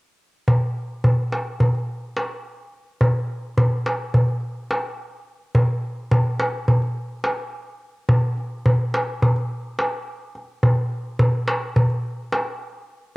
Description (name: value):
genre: turkish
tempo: free time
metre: none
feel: none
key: none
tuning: none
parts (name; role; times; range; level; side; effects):
- darbuka; percussion; 0.5-12.4 s; none; -19 LUFS; equal; none
room: moderate spring reverb, RT60 1.6 s, small room ambience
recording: home recording on cassette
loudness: -20 LUFS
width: side -24 dB against mid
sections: 0.5-13.2 A section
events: none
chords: none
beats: free time